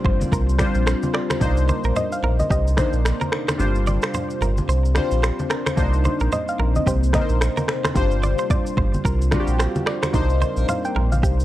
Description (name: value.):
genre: afrobeats.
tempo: 110 BPM.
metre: 4/4.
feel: swing 58% on 16ths.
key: C minor.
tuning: A4 = 440 Hz.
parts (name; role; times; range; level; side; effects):
warm analog keys; accompaniment; 0.0-11.4 s; G3 to C5; -25 LUFS; left 2 dB; chorus, phaser.
deep dark ambient pad; sustained chords; 0.0-11.4 s; C3 to D5; -31 LUFS; left 2 dB; chorus, built-in reverb.
sub bass with octave; bass; 0.0-11.4 s; G1 to C2; -20 LUFS; equal; none.
afro-pop drum kit; drums; 0.0-11.4 s; finger snaps, kick drum, rim click, shaker; -24 LUFS; equal; vintage 12-bit sampler grit.
downlifter; sound effects; 0.0-1.4 s; none; -50 LUFS; equal; none.
direct-recorded clean electric guitar; riff; 0.1-11.4 s; G4 to D5; -29 LUFS; right 5 dB; none.
congas; percussion; 0.1-11.2 s; none; -29 LUFS; equal; none.
soft round pluck; melody; 2.0-11.4 s; C5 to G5; -27 LUFS; right 1 dB; chorus.
room: little or no reverb.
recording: dry, gritty hardware recording.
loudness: -18 LUFS.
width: side -14 dB against mid.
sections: 0.0-11.4 A section.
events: kick muted 3.6-5.8.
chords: 0.0 G7sus4; 1.4 Cm9; 3.6 G7sus4; 5.8 Cm9; 8.0 G7sus4; 10.1 Cm9.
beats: 0.32 0.87 | 1.41 1.96 2.50 3.05 | 3.59 4.14 4.68 5.23 | 5.78 6.32 6.87 7.41 | 7.96 8.50 9.05 9.59 | 10.14 10.69 11.23.